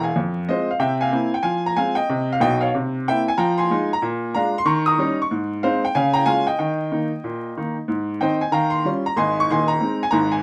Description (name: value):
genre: jazz, stride piano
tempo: 186 BPM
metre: 4/4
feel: swing 62% on 8ths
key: Ab major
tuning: A4 = 440 Hz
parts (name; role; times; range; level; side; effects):
- bright upright piano; solo; 0.0-10.4 s; Eb1 to Eb6; -21 LUFS; equal; none
room: moderate club reverb, RT60 0.6 s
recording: vinyl crackle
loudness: -21 LUFS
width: mono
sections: 0.0-7.9 A section; 7.9-10.4 A section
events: none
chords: 0.2 Fm; 0.8 C7; 1.4 Fm; 2.7 C7; 3.4 Fm7; 4.0 Bb7; 4.7 Eb7; 5.3 Ab; 6.0 Db; 6.6 Eb; 7.9 Ab; 8.5 Eb9; 9.2 Ab